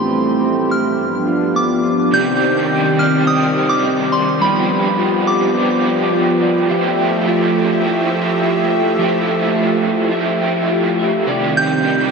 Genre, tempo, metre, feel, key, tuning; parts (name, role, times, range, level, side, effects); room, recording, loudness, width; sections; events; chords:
dream pop; 105 BPM; 4/4; straight; F lydian; A4 = 440 Hz
soft synth bell; melody; 0.0-6.1, 11.6-12.1 s; B5 to G6; -20 LUFS; right 1 dB; chorus, ping-pong delay
warm analog pad; sustained chords; 0.0-12.1 s; Eb3 to E5; -17 LUFS; right 1 dB; chorus
electric guitar through a small old amp; arpeggios; 0.0-12.1 s; G2 to E5; -22 LUFS; left 3 dB; wide subtle chorus, ping-pong delay
raw garage guitar; accompaniment; 2.1-12.1 s; G2 to G4; -20 LUFS; right 3 dB; overdrive, tremolo, ensemble chorus
wet huge ambient reverb, RT60 8.2 s; dreamy mix soaked in reverb; -14 LUFS; side -4 dB against mid
0.0-2.1 A section; 2.1-12.1 B section
0.0 Am7; 1.0 G7; 2.1 Cmadd9; 4.4 G7; 6.7 Fmaj9; 11.3 Cmadd9